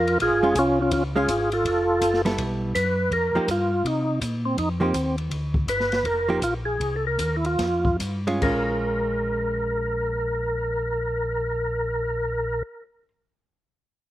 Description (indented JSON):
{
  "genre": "soul jazz organ trio",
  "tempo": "139-164 BPM",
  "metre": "4/4",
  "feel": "swing 64% on 8ths",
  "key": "Bb dorian",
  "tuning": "A4 = 440 Hz",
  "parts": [
    { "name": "percussive tonewheel organ", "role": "melody", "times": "0.0-12.6 s", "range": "C4 to B4", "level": "-23 LUFS", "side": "equal", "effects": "slow rotary speaker, overdrive, chorus vibrato, slapback echo" },
    { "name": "mellow tonewheel organ", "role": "bass", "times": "0.0-12.6 s", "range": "F1 to C3", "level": "-29 LUFS", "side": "equal", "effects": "chorus vibrato, slow rotary speaker" },
    { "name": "open jazz drum kit", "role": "drums", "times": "0.1-8.5 s", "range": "crash cymbal, hi-hat, kick drum, ride cymbal, snare drum", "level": "-32 LUFS", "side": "left 1 dB", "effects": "none" },
    { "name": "hollow-body jazz guitar", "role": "accompaniment", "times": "0.4-13.1 s", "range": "F3 to A4", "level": "-26 LUFS", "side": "right 2 dB", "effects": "none" }
  ],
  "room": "little or no reverb",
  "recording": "recorded outdoors, with no room sound",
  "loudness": "-22 LUFS",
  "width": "side -14 dB against mid",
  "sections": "0.0-2.4 A section; 2.4-8.4 B section; 8.4-11.9 C section",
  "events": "slowing down 5.3-8.4",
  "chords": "0.0 Bbm7; 1.7 F; 2.4 G69; 3.1 F9sus4; 3.8 Bbsus24; 4.6 F9sus4; 5.3 G; 6.0 F9sus4; 6.8 C7alt; 7.6 Fsus2; 8.4 Bbm7"
}